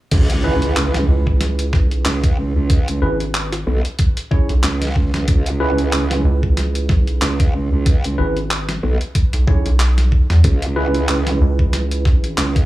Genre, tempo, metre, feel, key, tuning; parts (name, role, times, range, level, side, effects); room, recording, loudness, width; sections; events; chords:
glitch hop; 93 BPM; 4/4; swing 56% on 16ths; C# minor; A4 = 442 Hz
growl bass; bass; 0.1-12.7 s; B1 to C#2; -18 LUFS; right 1 dB; chorus, tube saturation
boom bap sampler-style drum kit; drums; 0.1-12.7 s; crash cymbal, handclaps, hi-hat, snare drum; -24 LUFS; equal; low-pass filter on hats, low-pass filter on cymbals, low-pass filter on snare
electronic kick drum; drums; 0.1-12.7 s; -15 LUFS; equal
impact; sound effects; 0.1-2.7 s; -24 LUFS; equal
tine electric piano; stabs; 0.4-12.7 s; C#4 to C#5; -24 LUFS; right 1 dB; medium stereo tremolo, sidechain pumping, tape echo
rubbery square bass; bass; 1.1-12.4 s; G#1 to E2; -16 LUFS; equal
little or no reverb; dry, gritty hardware recording, small room ambience; -15 LUFS; side -16 dB against mid
0.1-12.7 A section
drop 0.1-12.7; impact 0.1-2.7
0.1 C#m7